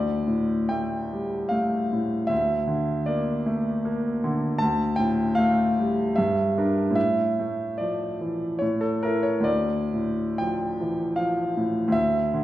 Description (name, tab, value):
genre	classical, romantic nocturne for solo piano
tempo	63-81 BPM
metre	3/4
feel	rubato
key	D minor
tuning	A4 = 445 Hz
part	bright concert grand piano	solo	0.0-12.4 s	D2 to A5	-22 LUFS	equal	none
room	wet recital hall reverb, RT60 1.7 s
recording	heard from further back in the room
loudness	-22 LUFS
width	side -14 dB against mid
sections	0.0-12.4 A section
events	none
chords	0.0 Dm; 2.3 Bbmaj7#11/D; 4.6 Dm; 6.2 Gm; 7.0 Dm/A; 8.6 A5; 9.5 Dm